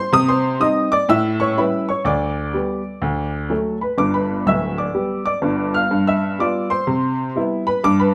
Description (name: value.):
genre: jazz, stride piano.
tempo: 124 BPM.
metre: 4/4.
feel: swing 64% on 8ths.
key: G major.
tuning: A4 = 440 Hz.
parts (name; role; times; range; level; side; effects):
clear upright piano; solo; 0.0-8.1 s; D1 to F6; -19 LUFS; equal; none.
room: moderate club reverb, RT60 0.6 s.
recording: none.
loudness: -20 LUFS.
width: mono.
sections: 0.0-4.0 A section; 4.0-8.1 A section.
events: none.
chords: 0.1 Cm; 1.1 A7; 2.1 G/D; 3.0 D; 4.0 G; 5.9 G7; 6.9 Cmaj7.